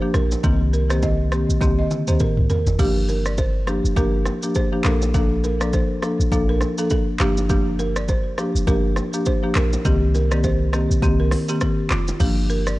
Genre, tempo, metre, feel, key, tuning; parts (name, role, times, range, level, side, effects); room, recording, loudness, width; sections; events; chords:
afrobeats; 102 BPM; 4/4; swing 58% on 16ths; G minor; A4 = 439 Hz
marimba with medium mallets; accompaniment; 0.0-12.8 s; Eb3 to A4; -22 LUFS; left 1 dB
balafon; riff; 0.1-12.8 s; F4 to Eb5; -28 LUFS; right 4 dB; tape echo
clean 808-style bass; bass; 0.1-12.8 s; F1 to D2; -21 LUFS; equal
afro-pop drum kit; drums; 0.1-12.8 s; crash cymbal, handclaps, hi-hat, kick drum, rim click, shaker, toms; -23 LUFS; equal
bongos and congas; percussion; 0.1-12.2 s; -33 LUFS; right 2 dB
digital ambience; dry, gritty hardware recording, transformer saturation, cassette tape, nothing above 11.0 kHz; -18 LUFS; side -18 dB against mid
0.0-2.8 A section; 2.8-12.2 B section
drum fill 1.6-2.8
0.4 Cm7; 2.8 Gm7; 4.8 Bbmaj7; 7.2 Gm7; 9.8 Cm7; 12.2 Gm7